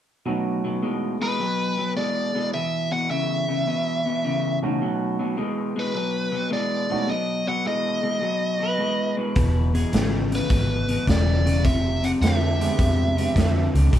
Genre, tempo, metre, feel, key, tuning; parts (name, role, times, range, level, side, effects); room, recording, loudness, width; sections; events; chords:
electric blues shuffle; 105 BPM; 4/4; swing 68% on 8ths; B mixolydian; A4 = 439 Hz
warm upright piano; accompaniment; 0.3-1.1, 4.6-7.1, 12.6-13.3 s; B2 to G4; -27 LUFS; right 5 dB
electric guitar through a small old amp; riff; 0.3-14.0 s; E2 to G#3; -25 LUFS; left 2 dB
biting lead guitar; melody; 1.2-13.7 s; B4 to F#5; -26 LUFS; right 1 dB; overdrive
clean lap steel guitar; second line; 8.6-10.1 s; G#4 to B4; -29 LUFS; right 2 dB
vintage muted fingered electric bass; bass; 9.4-14.0 s; E1 to F2; -22 LUFS; equal
raw garage drum kit; drums; 9.4-14.0 s; hi-hat, kick drum, snare drum; -24 LUFS; equal
moderate studio reverb, RT60 0.7 s; band playing live in one room; -21 LUFS; side -11 dB against mid
0.3-14.0 A section
0.3 B7; 2.5 E5; 4.8 B7; 9.4 E7; 11.6 Fdim7